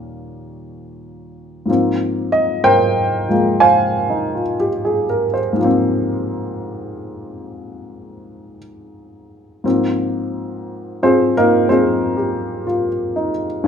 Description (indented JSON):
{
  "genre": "solo jazz",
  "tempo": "61 BPM",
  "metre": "4/4",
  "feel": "swing 67% on 8ths, rubato",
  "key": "Ab major",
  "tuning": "A4 = 444 Hz",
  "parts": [
    { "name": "dark baby grand piano", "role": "solo", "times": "0.0-13.7 s", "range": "Eb2 to Ab5", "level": "-16 LUFS", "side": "equal", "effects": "none" }
  ],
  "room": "moderate large studio reverb, RT60 0.9 s",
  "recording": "none",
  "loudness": "-15 LUFS",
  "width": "side -7 dB against mid",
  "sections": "0.0-9.7 A section; 9.7-13.7 B section",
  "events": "grand piano solo 9.7-13.7",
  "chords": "0.0 Eb9; 1.7 Ab69",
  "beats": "0.73 | 1.69 2.65 3.61 4.59 | 5.57 6.55 7.56 8.61 | 9.65 10.66 11.66 12.66 | 13.65"
}